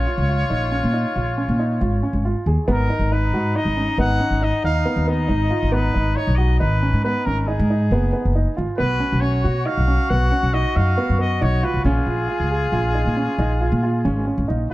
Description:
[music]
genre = progressive instrumental, progressive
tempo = 137 BPM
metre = 7/4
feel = straight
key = G# dorian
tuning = A4 = 443 Hz
[part]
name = clear trumpet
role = melody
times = 0.0-14.7 s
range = G#4 to F#5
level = -26 LUFS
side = equal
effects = none
[part]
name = clear flugelhorn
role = second line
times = 0.0-14.7 s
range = D#4 to F#4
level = -28 LUFS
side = left 3 dB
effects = none
[part]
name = dark baby grand piano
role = arpeggios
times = 0.0-14.7 s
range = B3 to G#4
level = -25 LUFS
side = right 2 dB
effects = none
[part]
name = upright bass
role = bass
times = 0.0-14.7 s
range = F#1 to B2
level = -20 LUFS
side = equal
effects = none
[sound]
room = small room ambience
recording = dark, warm production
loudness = -17 LUFS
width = side -17 dB against mid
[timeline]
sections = 0.0-2.7 A section; 2.7-14.7 A section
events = none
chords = 0.0 A#m7; 2.7 G#m7; 8.8 Bsus2; 11.8 A#m7

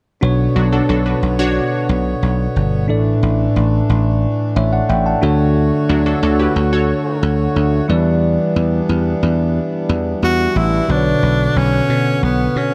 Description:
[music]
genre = pop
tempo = 90 BPM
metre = 4/4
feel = straight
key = B minor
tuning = A4 = 440 Hz
[part]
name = bell-like tine electric piano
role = accompaniment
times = 0.2-12.7 s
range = A2 to A5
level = -20 LUFS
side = equal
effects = none
[part]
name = pedal harmonium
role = sustained chords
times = 0.2-12.7 s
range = D3 to C#5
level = -25 LUFS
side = equal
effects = none
[part]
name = dry thumbed slap bass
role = bass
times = 0.2-12.7 s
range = G1 to B2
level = -20 LUFS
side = equal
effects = none
[part]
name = funky polysynth comp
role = stabs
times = 0.6-1.9, 5.9-7.2 s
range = F#3 to C#5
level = -23 LUFS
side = equal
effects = chorus
[part]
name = clear tenor saxophone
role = melody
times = 10.2-12.7 s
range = B3 to F#4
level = -20 LUFS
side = equal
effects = delay
[sound]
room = moderate lush hall reverb, RT60 2.3 s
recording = dark, warm production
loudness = -16 LUFS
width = mono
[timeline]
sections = 0.2-10.9 A section; 10.9-12.7 B section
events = none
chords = 0.2 Bmadd9; 2.9 Asus4; 5.2 Dmaj7; 7.9 Em7; 10.9 Bmadd9

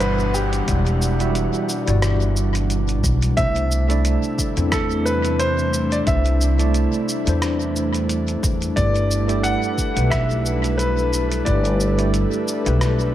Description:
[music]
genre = sunset chillout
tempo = 89 BPM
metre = 4/4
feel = swing 56% on 16ths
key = unclear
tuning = A4 = 439 Hz
[part]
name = bright concert grand piano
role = melody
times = 0.0-12.8 s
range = G4 to F#5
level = -25 LUFS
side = left 1 dB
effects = tape echo
[part]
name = tine electric piano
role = accompaniment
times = 0.0-13.1 s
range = G3 to F#5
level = -25 LUFS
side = moving between left 5 dB and right 8 dB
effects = medium tremolo, auto-pan, tape echo
[part]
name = airy breathy pad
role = sustained chords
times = 0.0-13.1 s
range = B2 to F#5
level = -26 LUFS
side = equal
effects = chorus
[part]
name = upright bass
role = bass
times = 0.0-13.1 s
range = E1 to E2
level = -20 LUFS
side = equal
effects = tube saturation
[part]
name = dusty soul sampler-style drum kit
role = drums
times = 0.0-13.1 s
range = cabasa, hi-hat, rim click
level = -29 LUFS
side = equal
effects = tape echo
[part]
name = downlifter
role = sound effects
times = 0.0-3.4 s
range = none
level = -34 LUFS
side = right 1 dB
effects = none
[part]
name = electronic kick drum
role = drums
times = 0.7-11.6 s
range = none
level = -24 LUFS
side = equal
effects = overdrive
[sound]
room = light reverb, digital ambience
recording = echo-heavy mix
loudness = -17 LUFS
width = side -12 dB against mid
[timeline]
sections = 0.0-13.1 A section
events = none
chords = 0.0 Em9; 3.4 C69; 8.8 G69

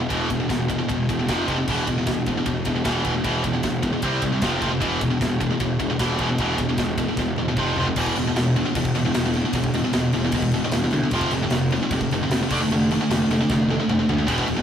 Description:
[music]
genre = heavy metal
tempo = 152 BPM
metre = 4/4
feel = straight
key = unclear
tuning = A4 = 442 Hz
[part]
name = heavy high-gain guitar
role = riff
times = 0.0-14.6 s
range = E2 to D4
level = -22 LUFS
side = equal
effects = distortion
[part]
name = fuzz picked electric bass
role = bass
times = 0.0-14.6 s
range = E1 to D2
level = -26 LUFS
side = equal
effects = overdrive
[part]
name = tight metal drum kit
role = drums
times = 0.1-14.6 s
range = crash cymbal, kick drum, ride cymbal, snare drum, toms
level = -28 LUFS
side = equal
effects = none
[sound]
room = light reverb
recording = rough rehearsal-room recording, warm saturation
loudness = -20 LUFS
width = side -8 dB against mid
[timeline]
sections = 0.0-8.0 A section; 8.0-14.6 B section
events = drum fill 7.2-8.0, 13.5-14.3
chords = 0.0 E5; 1.3 F5; 1.7 E5; 4.0 C5; 4.4 F5; 4.8 E5; 7.6 F5; 8.0 E5; 11.1 F5; 12.5 Dm/F

